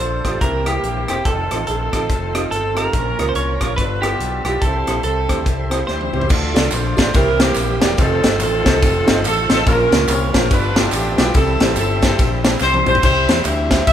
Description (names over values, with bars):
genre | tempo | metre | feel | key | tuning
uptempo gospel | 143 BPM | 4/4 | swing 61% on 8ths | unclear | A4 = 443 Hz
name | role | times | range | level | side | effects
clean electric guitar | melody | 0.0-6.3 s | G4 to Db5 | -24 LUFS | right 2 dB | none
mellow saxophone section | melody | 0.0-13.9 s | Bb3 to E5 | -20 LUFS | equal | none
warm upright piano | accompaniment | 0.0-13.8 s | G2 to D5 | -25 LUFS | right 1 dB | none
bright tonewheel organ | sustained chords | 0.0-13.9 s | Eb3 to E5 | -28 LUFS | right 2 dB | fast rotary speaker, overdrive, chorus vibrato
fingered electric bass | bass | 0.0-13.9 s | E1 to E2 | -22 LUFS | equal | none
tight funk drum kit | drums | 0.2-13.9 s | crash cymbal, hi-hat, kick drum, ride cymbal, rim click, snare drum, toms | -18 LUFS | equal | none
tambourine and handclaps | percussion | 6.3-13.9 s | none | -31 LUFS | right 4 dB | none
room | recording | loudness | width
moderate large studio reverb, RT60 1.1 s | band playing live in one room | -14 LUFS | side -10 dB against mid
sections
0.0-6.3 A section; 6.3-13.9 B section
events
drum fill 5.9-6.3, 12.6-13.0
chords
0.4 C7; 1.3 F7; 2.9 Bbm; 3.8 G13; 4.6 C; 6.3 Dm; 7.1 C7; 8.0 F7; 9.7 Bbm; 10.5 G13; 11.3 C